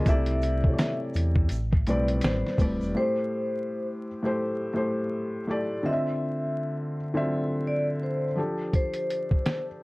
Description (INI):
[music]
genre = lo-fi hip hop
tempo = 83 BPM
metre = 4/4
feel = swing 60% on 16ths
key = A minor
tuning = A4 = 440 Hz
[part]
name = felt-muted upright piano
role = accompaniment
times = 0.0-9.8 s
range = A2 to E5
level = -28 LUFS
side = left 1 dB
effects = none
[part]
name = sub bass with octave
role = bass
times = 0.0-2.9 s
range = D1 to E2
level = -27 LUFS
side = equal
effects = none
[part]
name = vibraphone with medium mallets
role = melody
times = 0.1-9.6 s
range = C5 to E5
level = -31 LUFS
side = equal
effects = analog delay
[part]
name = dusty soul sampler-style drum kit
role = drums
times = 0.1-2.8, 8.7-9.7 s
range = hi-hat, kick drum, snare drum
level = -24 LUFS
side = equal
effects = none
[part]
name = egg shaker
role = percussion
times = 0.1-2.9 s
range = none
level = -53 LUFS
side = right 6 dB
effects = none
[sound]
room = light reverb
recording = worn, warbling old tape, cassette tape, vinyl crackle, warbly pitch drift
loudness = -25 LUFS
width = side -23 dB against mid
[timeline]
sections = 0.0-3.0 A section; 3.0-9.8 B section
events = none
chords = 0.1 C69; 1.5 Am11; 3.0 Am7; 5.8 Dm9; 8.4 F69